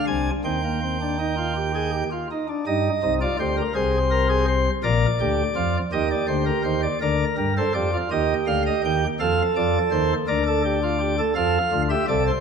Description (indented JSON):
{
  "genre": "classical, baroque-style 3-part fugue for pipe organ",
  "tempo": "55 BPM (dotted quarters)",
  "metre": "6/8",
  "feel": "straight",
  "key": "Eb major, Bb major from 7.0 s",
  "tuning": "A4 = 440 Hz",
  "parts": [
    { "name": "pipe organ, sparkling flutes", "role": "solo", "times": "0.0-12.4 s", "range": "Bb1 to Ab5", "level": "-20 LUFS", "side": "equal", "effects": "none" }
  ],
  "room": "wet recital hall reverb, RT60 1.4 s",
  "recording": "none",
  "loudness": "-20 LUFS",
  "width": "side -6 dB against mid",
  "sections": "0.0-2.7 A section; 2.7-7.0 B section; 7.0-12.4 C section",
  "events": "none",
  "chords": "0.5 Eb; 3.8 Ab/C; 4.8 Bb; 5.9 Eb; 7.0 Bb/D; 8.1 Eb; 9.2 F; 10.3 Bb/D; 11.4 F"
}